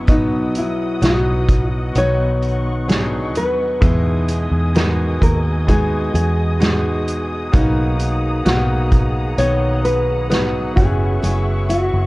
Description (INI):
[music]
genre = pop ballad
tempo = 65 BPM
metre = 4/4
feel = straight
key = B major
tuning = A4 = 441 Hz
[part]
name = clear baby grand piano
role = accompaniment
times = 0.0-12.1 s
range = B2 to D#5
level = -24 LUFS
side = equal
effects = none
[part]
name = muted studio string section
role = sustained chords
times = 0.0-12.1 s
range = B3 to D#6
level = -29 LUFS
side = equal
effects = none
[part]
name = picked steel-string acoustic guitar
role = arpeggios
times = 0.0-12.1 s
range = B2 to B4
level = -29 LUFS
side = left 2 dB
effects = tape echo
[part]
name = vintage muted fingered electric bass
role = bass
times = 0.0-12.1 s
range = F#1 to E2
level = -19 LUFS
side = equal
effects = none
[part]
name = nylon-string guitar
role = melody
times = 0.1-12.1 s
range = D#4 to C#5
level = -22 LUFS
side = left 1 dB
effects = none
[part]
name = soft-mallet drum kit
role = drums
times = 0.1-11.9 s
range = hi-hat, kick drum, snare drum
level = -18 LUFS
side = equal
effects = none
[sound]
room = little or no reverb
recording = worn, warbling old tape, cassette tape, warbly pitch drift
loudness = -15 LUFS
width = side -20 dB against mid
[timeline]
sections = 0.0-12.1 A section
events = none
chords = 0.1 B; 3.8 Emaj7; 7.5 Bmaj7; 10.8 F#7sus4